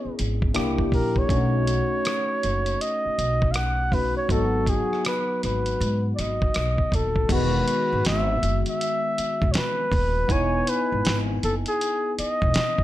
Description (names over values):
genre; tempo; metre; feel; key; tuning
R&B, neo-soul; 80 BPM; 4/4; swing 64% on 16ths; unclear; A4 = 440 Hz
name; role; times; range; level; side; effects
mellow flugelhorn; melody; 0.0-12.8 s; G#4 to F#5; -25 LUFS; equal; slapback echo
barky tine electric piano; accompaniment; 0.0-12.8 s; D#3 to G#5; -28 LUFS; left 2 dB; overdrive, analog chorus
upright bass; bass; 0.1-12.5 s; D#1 to G#2; -26 LUFS; equal; none
dusty soul sampler-style drum kit; drums; 0.2-12.8 s; crash cymbal, hi-hat, kick drum, rim click, snare drum; -26 LUFS; equal; none
room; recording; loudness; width
little or no reverb; none; -21 LUFS; side -14 dB against mid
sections
0.0-7.3 A section; 7.3-12.8 B section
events
none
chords
0.0 Amaj9 (rootless); 0.5 C9; 1.3 B7; 4.3 G#m7; 7.3 Emaj7